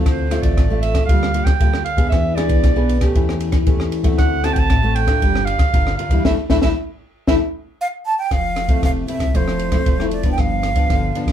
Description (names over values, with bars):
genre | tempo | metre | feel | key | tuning
samba and choro | 116 BPM | 4/4 | straight | F major from 8.3 s | A4 = 440 Hz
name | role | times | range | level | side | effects
nylon-string guitar | accompaniment | 0.0-11.3 s | G2 to Bb4 | -21 LUFS | left 2 dB | none
rubbery square bass | bass | 0.0-11.3 s | F1 to E2 | -22 LUFS | equal | none
clear clarinet | second line | 0.1-7.3 s | C5 to A5 | -22 LUFS | right 6 dB | none
compact cocktail drum kit | drums | 0.1-11.3 s | kick drum, ride cymbal, rim click, snare drum | -18 LUFS | equal | none
breathy jazz flute | melody | 7.8-11.3 s | C5 to A5 | -22 LUFS | right 3 dB | none
room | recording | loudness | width
wet small room reverb, RT60 0.5 s | heard from further back in the room | -15 LUFS | side -10 dB against mid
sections
0.0-8.3 A section; 8.3-11.3 B section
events
clarinet solo 0.0-8.3; band accent 6.3-8.3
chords
0.1 Dm7; 1.1 Gm7/D; 2.1 E7; 3.2 A7/E; 4.2 D7; 5.2 Gm7; 6.3 Asus4; 8.3 Fmaj7; 9.3 Dm9/F; 10.4 G7